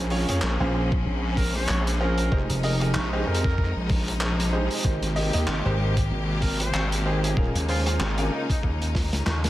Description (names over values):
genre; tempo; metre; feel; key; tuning
glitch hop; 95 BPM; 4/4; swing 57% on 16ths; Bb dorian; A4 = 441 Hz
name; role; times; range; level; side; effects
bright studio string section; sustained chords; 0.0-9.5 s; C3 to G4; -32 LUFS; left 1 dB; sidechain pumping
wobble bass; bass; 0.0-8.3 s; Eb1 to F2; -25 LUFS; equal; chorus
clear concert grand piano; stabs; 0.1-8.5 s; Db4 to Eb5; -31 LUFS; right 1 dB; vintage 12-bit sampler grit, sidechain pumping, diffuse ambient delay
crunchy breakbeat drum kit; drums; 0.1-9.5 s; handclaps, hi-hat, rim click, snare drum; -31 LUFS; equal; none
vintage slap bass; bass; 0.6-9.5 s; F1 to Eb2; -24 LUFS; equal; none
electronic kick drum; drums; 0.9-9.1 s; none; -26 LUFS; equal; none
warm trumpet; melody; 1.4-8.6 s; Eb4 to Db5; -34 LUFS; equal; diffuse ambient delay
room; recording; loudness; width
light reverb, studio ambience; none; -22 LUFS; side -15 dB against mid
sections
0.0-9.5 A section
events
drum fill 9.0-9.5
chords
0.0 Bbm9; 2.3 Fm7; 4.8 Abmaj9; 7.4 Eb7sus4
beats
0.42 1.06 1.69 | 2.32 2.95 3.58 4.21 | 4.85 5.48 6.11 6.74 | 7.37 8.00 8.64 9.27